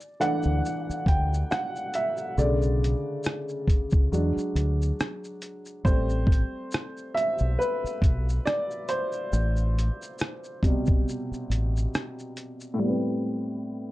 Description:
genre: lo-fi hip hop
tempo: 69 BPM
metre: 4/4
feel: swing 57% on 16ths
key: A dorian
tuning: A4 = 440 Hz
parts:
  - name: dark upright piano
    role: accompaniment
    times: 0.0-13.9 s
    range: A2 to G5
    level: -28 LUFS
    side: equal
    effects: cassette tape, low-pass filter, plate reverb
  - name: dusty soul sampler-style drum kit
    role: drums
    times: 0.0-12.8 s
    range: hi-hat, kick drum, rim click, shaker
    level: -25 LUFS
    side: equal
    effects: none
  - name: deep dub fingered electric bass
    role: bass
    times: 0.5-11.9 s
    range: A1 to E2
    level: -25 LUFS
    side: equal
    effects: none
room: light reverb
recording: dark, warm production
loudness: -24 LUFS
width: side -17 dB against mid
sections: 0.0-12.8 A section; 12.8-13.9 B section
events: upright piano solo 0.0-12.8; break 11.1-12.8; filter sweep on upright piano 12.8-13.9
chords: 0.0 C69 (rootless); 2.4 Bm9; 4.1 E7 (rootless); 5.8 Am9

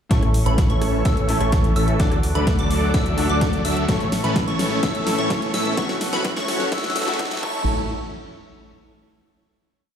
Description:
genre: EDM, festival progressive house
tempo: 127 BPM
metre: 4/4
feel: straight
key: A major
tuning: A4 = 440 Hz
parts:
  - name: bright grand piano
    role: accompaniment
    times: 0.1-7.7 s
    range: A2 to A4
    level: -30 LUFS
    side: left 2 dB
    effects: sidechain pumping, digital delay
  - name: lush unison pad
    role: sustained chords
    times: 0.1-7.7 s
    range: A3 to D6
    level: -32 LUFS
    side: equal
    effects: chorus, sidechain pumping
  - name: plucky unison lead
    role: arpeggios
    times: 0.1-7.6 s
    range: B5 to E6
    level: -29 LUFS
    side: equal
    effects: phaser, sidechain pumping, digital delay
  - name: big supersaw lead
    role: riff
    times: 0.1-7.6 s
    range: E3 to E5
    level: -24 LUFS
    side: equal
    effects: sidechain pumping, low-pass filter, digital delay
  - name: fat analog bass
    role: bass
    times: 0.1-7.7 s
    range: F#1 to A2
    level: -25 LUFS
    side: equal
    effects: sidechain pumping
  - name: big-room dance drum kit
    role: drums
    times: 0.1-7.5 s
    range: crash cymbal, hi-hat, rim click, snare drum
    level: -28 LUFS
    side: equal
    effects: none
  - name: electronic kick drum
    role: drums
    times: 0.1-7.5 s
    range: none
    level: -22 LUFS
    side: equal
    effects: overdrive
  - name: riser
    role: sound effects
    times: 4.2-7.7 s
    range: none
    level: -37 LUFS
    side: right 1 dB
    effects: none
room: light reverb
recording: played on a big sound system in a bare room, large studio reverb, high-pass filter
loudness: -18 LUFS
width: side -8 dB against mid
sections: 0.1-7.7 build; 7.7-9.6 final hit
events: build-up 0.1-7.7; drum fill 0.1-7.7; filter sweep on supersaw synth 0.1-7.7; filter sweep on digital synth lead 0.1-7.7; filter sweep 0.1-7.7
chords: 0.1 A; 2.0 D; 3.9 A; 5.8 F#m7; 7.4 A; 7.7 N.C.

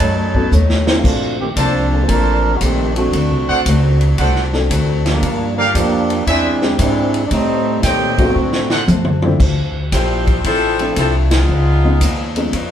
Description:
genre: jazz, big band swing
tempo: 115 BPM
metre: 4/4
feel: swing 67% on 8ths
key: unclear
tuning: A4 = 440 Hz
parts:
  - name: mellow trombone section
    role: second line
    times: 0.0-8.8 s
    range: D3 to Bb4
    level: -19 LUFS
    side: right 2 dB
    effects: none
  - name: picked old ladder-braced acoustic guitar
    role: accompaniment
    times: 0.0-12.7 s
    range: G2 to C5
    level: -24 LUFS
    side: left 3 dB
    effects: none
  - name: warm trumpet section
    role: stabs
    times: 0.0-8.8 s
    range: G4 to A5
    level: -20 LUFS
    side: right 2 dB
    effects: none
  - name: upright bass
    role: bass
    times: 0.0-12.7 s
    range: A1 to Bb2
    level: -17 LUFS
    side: equal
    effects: none
  - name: vintage drum kit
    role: drums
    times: 0.0-12.7 s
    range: crash cymbal, hi-hat, kick drum, ride cymbal, snare drum, toms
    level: -20 LUFS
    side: equal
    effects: none
  - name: dark grand piano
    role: accompaniment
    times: 0.4-12.5 s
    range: F3 to C5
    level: -22 LUFS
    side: left 2 dB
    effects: none
  - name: warm saxophone section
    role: melody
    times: 9.9-12.3 s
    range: F3 to A4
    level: -18 LUFS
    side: left 3 dB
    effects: none
room: wet studio reverb, RT60 0.7 s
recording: band playing live in one room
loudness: -13 LUFS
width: side -9 dB against mid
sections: 0.0-9.4 A section; 9.4-12.7 B section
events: trombone section solo 0.0-9.4; drum fill 0.5-1.0, 8.4-9.4; band accent 11.2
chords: 0.0 B9; 1.0 Bbmaj9; 3.1 D7; 5.2 Gm7; 6.3 E7alt; 7.3 Am7b5; 8.4 D7; 9.4 Dm9; 11.5 C#9

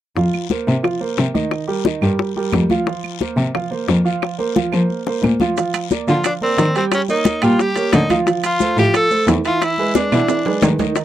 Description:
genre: Afro-Cuban jazz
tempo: 178 BPM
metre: 4/4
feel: straight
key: unclear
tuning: A4 = 439 Hz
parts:
  - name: warm grand piano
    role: accompaniment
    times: 0.2-11.0 s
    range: Eb3 to G5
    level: -20 LUFS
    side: right 4 dB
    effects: none
  - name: dark cello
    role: bass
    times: 0.2-10.7 s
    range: E2 to F3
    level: -17 LUFS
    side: left 1 dB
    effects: none
  - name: bongos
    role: percussion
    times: 0.2-11.0 s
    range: none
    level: -21 LUFS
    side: left 9 dB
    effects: none
  - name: congas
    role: percussion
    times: 0.2-11.0 s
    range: none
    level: -23 LUFS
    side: left 3 dB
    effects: none
  - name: guiro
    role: percussion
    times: 0.2-11.0 s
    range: none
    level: -32 LUFS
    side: left 25 dB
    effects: none
  - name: claves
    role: percussion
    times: 0.3-10.8 s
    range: none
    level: -29 LUFS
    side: right 22 dB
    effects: none
  - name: maracas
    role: percussion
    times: 5.6-11.0 s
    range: none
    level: -34 LUFS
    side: right 24 dB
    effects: none
  - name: timbales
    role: percussion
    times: 5.6-11.0 s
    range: none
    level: -23 LUFS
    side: right 6 dB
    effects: none
  - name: edgy tenor saxophone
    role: melody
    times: 6.1-10.8 s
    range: C4 to A4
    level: -18 LUFS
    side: left 1 dB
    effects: none
room: light reverb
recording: dry, close 1970s-style studio recording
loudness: -15 LUFS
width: side -12 dB against mid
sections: 0.2-5.6 A section; 5.6-11.0 B section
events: drum fill 4.6-5.6, 10.0-11.0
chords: 0.2 F7sus4; 1.5 Cm7 (rootless); 2.9 Fsus4; 5.6 Bb69; 6.9 Eb9; 8.3 Dm7 (rootless); 9.6 E7

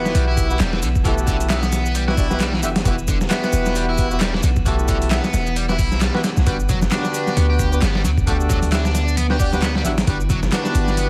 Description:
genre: breakbeat, breaks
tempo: 133 BPM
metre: 4/4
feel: swing 58% on 16ths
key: E minor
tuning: A4 = 440 Hz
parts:
  - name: tonewheel organ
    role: sustained chords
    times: 0.0-11.1 s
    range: D3 to F#5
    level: -31 LUFS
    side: equal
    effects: stopped rotary speaker, sidechain pumping
  - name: distorted electric guitar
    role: riff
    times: 0.0-11.1 s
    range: D3 to G4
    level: -29 LUFS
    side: equal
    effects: overdrive, tube saturation, tape echo
  - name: dark horn section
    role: stabs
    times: 0.0-11.1 s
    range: A3 to E5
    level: -27 LUFS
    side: equal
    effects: tape echo
  - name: impact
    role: sound effects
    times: 0.0-1.1 s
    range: none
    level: -44 LUFS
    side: equal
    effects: none
  - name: warm 808-style bass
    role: bass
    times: 0.1-11.1 s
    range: E1 to D2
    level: -23 LUFS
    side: equal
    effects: none
  - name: dusty soul sampler-style drum kit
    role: drums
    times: 0.1-11.1 s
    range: hi-hat, kick drum, snare drum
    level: -24 LUFS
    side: equal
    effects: overdrive
  - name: electronic shaker and handclaps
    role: drums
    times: 0.1-11.1 s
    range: none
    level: -33 LUFS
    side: equal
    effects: none
  - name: congas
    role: percussion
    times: 6.7-11.1 s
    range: none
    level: -30 LUFS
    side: equal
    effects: none
room: little or no reverb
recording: dense, heavily limited modern master, vinyl crackle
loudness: -19 LUFS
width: mono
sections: 0.0-11.1 A section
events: impact 0.0-1.1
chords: 0.0 Emadd9; 6.5 Gmaj7

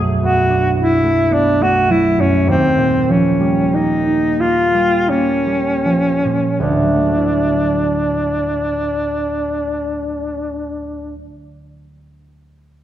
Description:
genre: classical, impressionist duo for alto saxophone and harp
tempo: 37-57 BPM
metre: 3/4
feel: rubato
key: unclear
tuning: A4 = 440 Hz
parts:
  - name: concert harp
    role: accompaniment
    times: 0.0-11.7 s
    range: B1 to F#4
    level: -18 LUFS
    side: right 2 dB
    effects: none
  - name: warm alto saxophone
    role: melody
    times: 0.2-11.2 s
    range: C4 to F#4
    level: -16 LUFS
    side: equal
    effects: none
room: wet scoring stage reverb, RT60 1.7 s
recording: none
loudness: -14 LUFS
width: side -11 dB against mid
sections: 0.0-6.6 A section; 6.6-10.9 B section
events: slowing down 0.0-6.6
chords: 0.0 Bm7; 2.5 Eb9; 6.6 Dadd9

